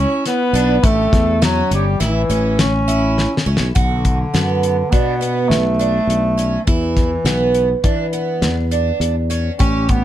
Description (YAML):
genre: progressive instrumental, band music in an uneven meter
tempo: 103 BPM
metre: 5/4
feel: straight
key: B minor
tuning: A4 = 440 Hz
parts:
  - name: clear bass clarinet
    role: melody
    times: 0.0-10.0 s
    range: D3 to C#4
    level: -20 LUFS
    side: right 1 dB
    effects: plate reverb
  - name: warm alto saxophone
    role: second line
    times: 0.0-3.5 s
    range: E4 to C#5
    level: -23 LUFS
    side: left 5 dB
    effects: none
  - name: picked twelve-string acoustic guitar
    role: arpeggios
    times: 0.0-10.0 s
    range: B3 to G4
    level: -22 LUFS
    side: right 5 dB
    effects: ping-pong delay
  - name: sustaining fretless electric bass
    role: bass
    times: 0.0-10.0 s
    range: G1 to E3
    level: -19 LUFS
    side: left 1 dB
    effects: none
  - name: damped 70s drum kit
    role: drums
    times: 0.3-10.0 s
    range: hi-hat, kick drum, snare drum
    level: -18 LUFS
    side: left 1 dB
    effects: none
room: moderate small room reverb, RT60 0.5 s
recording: dark, warm production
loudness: -14 LUFS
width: side -12 dB against mid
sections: 0.0-3.8 A section; 3.8-10.0 B section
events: drum fill 3.2-3.8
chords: 0.0 E5; 0.8 A7; 3.8 Bm7; 6.7 E5